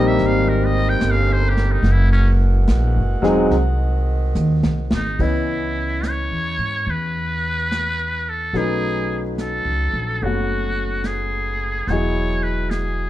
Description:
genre	jazz ballad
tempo	72 BPM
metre	4/4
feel	swing 68% on 8ths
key	C# minor from 5.2 s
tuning	A4 = 438 Hz
part	trumpet with metal mute	melody	0.0-13.1 s	Db4 to G5	-24 LUFS	equal	none
part	clear concert grand piano	accompaniment	0.0-13.1 s	E3 to D#5	-22 LUFS	left 1 dB	none
part	mellow saxophone section	sustained chords	0.0-5.2 s	Eb3 to G4	-29 LUFS	right 4 dB	none
part	upright bass	bass	0.0-13.1 s	Fb1 to G#2	-20 LUFS	equal	none
part	vintage brush drum kit	drums	0.2-13.1 s	brushed snare drum, hi-hat, kick drum, ride cymbal, snare drum	-26 LUFS	equal	none
room	light reverb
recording	dark, warm production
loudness	-17 LUFS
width	side -14 dB against mid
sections	0.0-5.2 A section; 5.2-13.1 B section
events	muted trumpet solo 0.0-5.2; drum fill 4.4-5.2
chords	0.0 Cm7; 1.8 Gb9; 3.5 Ab7; 5.2 C#m9; 8.5 B13; 11.9 Emaj9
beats	0.19 1.02 | 1.85 2.68 3.52 4.36 | 5.21 6.04 6.88 7.71 | 8.54 9.38 10.20 11.03 | 11.86 12.69

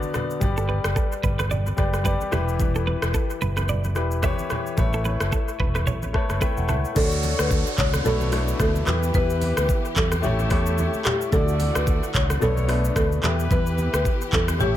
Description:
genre	afrobeats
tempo	110 BPM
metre	4/4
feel	swing 58% on 16ths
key	unclear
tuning	A4 = 441 Hz
part	warm concert grand piano	accompaniment	0.0-14.8 s	B2 to A5	-28 LUFS	left 4 dB	dub echo
part	afro-pop drum kit	drums	0.0-14.7 s	crash cymbal, handclaps, hi-hat, kick drum, rim click, shaker	-25 LUFS	equal	dub echo
part	congas	percussion	0.0-14.7 s	none	-32 LUFS	right 2 dB	none
part	fingered electric bass	bass	0.4-14.8 s	E1 to E2	-24 LUFS	equal	none
part	clean electric guitar	riff	0.6-6.8 s	G4 to E5	-32 LUFS	right 5 dB	spring reverb, dub echo
part	buzzing marimba with medium mallets	melody	7.0-14.8 s	G4 to C#5	-28 LUFS	left 1 dB	dub echo
part	clear horn section	second line	7.0-14.8 s	C#4 to E5	-33 LUFS	right 2 dB	none
part	warm studio string section	sustained chords	7.0-14.8 s	D3 to C#5	-34 LUFS	equal	none
part	downlifter	sound effects	7.0-11.3 s	none	-34 LUFS	right 5 dB	none
room	small room ambience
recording	echo-heavy mix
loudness	-20 LUFS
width	side -12 dB against mid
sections	0.0-7.0 A section; 7.0-14.8 B section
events	grand piano fill 5.9-7.0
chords	0.4 G; 2.3 Em; 4.8 Aadd9; 7.0 Dmaj7; 8.1 Bm7; 8.9 Em; 10.2 A7; 11.3 Dmaj7; 12.4 Bm7; 13.2 Em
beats	| 0.41 0.96 1.50 2.05 | 2.60 3.14 3.69 4.23 | 4.78 5.32 5.87 6.41 | 6.96 7.50 8.05 8.60 | 9.14 9.69 10.23 10.78 | 11.32 11.87 12.41 12.96 | 13.51 14.05 14.60

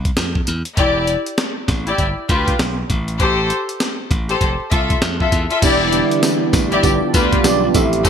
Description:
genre	R&B, new jack swing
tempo	99 BPM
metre	4/4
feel	swing 61% on 16ths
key	unclear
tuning	A4 = 439 Hz
part	glassy slap bass	bass	0.0-8.1 s	E1 to F2	-22 LUFS	equal	none
part	breakbeat sampler-style drum kit	drums	0.1-8.1 s	crash cymbal, hi-hat, kick drum, snare drum, tambourine	-19 LUFS	equal	gated reverb
part	warm studio string section	stabs	0.8-8.1 s	E4 to E5	-19 LUFS	left 3 dB	ping-pong delay
part	mellow tine electric piano	accompaniment	5.6-8.1 s	B3 to E5	-18 LUFS	right 5 dB	ensemble chorus
part	lush unison pad	sustained chords	5.8-8.1 s	C3 to G4	-21 LUFS	equal	chorus
room	moderate plate reverb, RT60 1.3 s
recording	bright 1980s-style digital production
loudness	-15 LUFS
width	side -8 dB against mid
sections	0.0-5.6 A section; 5.6-8.1 B section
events	none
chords	0.0 F5; 0.8 Em7; 2.0 G7; 2.9 Am7; 4.4 Fmaj7; 5.6 Em7; 6.8 G7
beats	0.17 | 0.78 1.38 1.99 2.59 | 3.20 3.81 4.41 5.02 | 5.62 6.23 6.83 7.44 | 8.05

